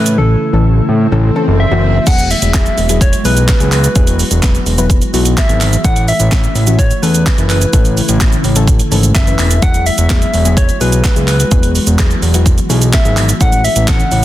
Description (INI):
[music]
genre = dance-pop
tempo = 127 BPM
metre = 4/4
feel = straight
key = unclear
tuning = A4 = 440 Hz
[part]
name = soft struck synth lead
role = melody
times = 0.0-14.2 s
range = A4 to F#5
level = -19 LUFS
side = left 1 dB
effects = chorus, dub echo
[part]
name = glassy FM pad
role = sustained chords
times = 0.0-14.2 s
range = C#3 to F#4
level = -21 LUFS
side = right 1 dB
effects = ensemble chorus, built-in reverb, sidechain pumping
[part]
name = fat analog bass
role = bass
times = 0.0-14.2 s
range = E1 to A2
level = -13 LUFS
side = equal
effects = sidechain pumping
[part]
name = house drum kit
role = drums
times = 0.1-14.2 s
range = crash cymbal, handclaps, hi-hat, kick drum, shaker, snare drum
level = -13 LUFS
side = equal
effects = none
[part]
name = soft round pluck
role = accompaniment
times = 0.2-14.1 s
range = E3 to B4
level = -19 LUFS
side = left 4 dB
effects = chorus, sidechain pumping
[part]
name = swell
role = sound effects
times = 0.6-2.1 s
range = none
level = -25 LUFS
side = equal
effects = none
[sound]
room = little or no reverb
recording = dense, heavily limited modern master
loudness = -9 LUFS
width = side -14 dB against mid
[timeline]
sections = 0.0-2.1 A section; 2.1-14.2 B section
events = silent gap 0.2-2.1; swell 0.6-2.1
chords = 0.0 A; 2.1 Eadd9; 5.8 A; 9.6 Eadd9; 13.4 A